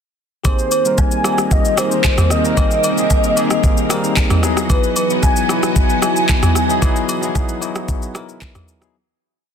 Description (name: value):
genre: amapiano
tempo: 113 BPM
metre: 4/4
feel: straight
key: unclear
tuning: A4 = 442 Hz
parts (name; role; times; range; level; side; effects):
- bell-like tine electric piano; accompaniment; 0.4-9.0 s; F#3 to B4; -22 LUFS; left 3 dB; medium stereo tremolo
- string machine, violins; sustained chords; 0.4-8.9 s; Eb3 to D#5; -22 LUFS; right 1 dB; ensemble chorus
- afro-pop drum kit; drums; 0.4-8.9 s; handclaps, kick drum, rim click, shaker, toms; -16 LUFS; equal; none
- warm velvety synth lead; melody; 0.5-8.4 s; B4 to Ab5; -20 LUFS; equal; chorus, ping-pong delay
- agogo bells and woodblock; percussion; 0.5-8.7 s; none; -29 LUFS; equal; none
room: light reverb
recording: dense, heavily limited modern master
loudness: -14 LUFS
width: side -7 dB against mid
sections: 0.5-8.9 groove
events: fade-out 6.8-8.9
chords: 0.5 Abmaj9; 4.4 Emaj9